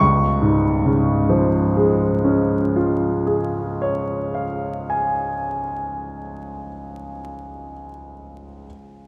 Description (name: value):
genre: classical, impressionist solo piano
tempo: 28 BPM (dotted quarters)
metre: 9/8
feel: rubato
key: Db major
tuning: A4 = 441 Hz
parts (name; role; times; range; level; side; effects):
- clear concert grand piano; solo; 0.0-8.7 s; Db2 to Db6; -21 LUFS; equal; none
room: wet cathedral reverb, RT60 6.6 s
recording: in a vast, echoing space, vinyl crackle, faint mains hum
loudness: -20 LUFS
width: mono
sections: 0.0-6.4 A section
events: none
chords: 0.0 Db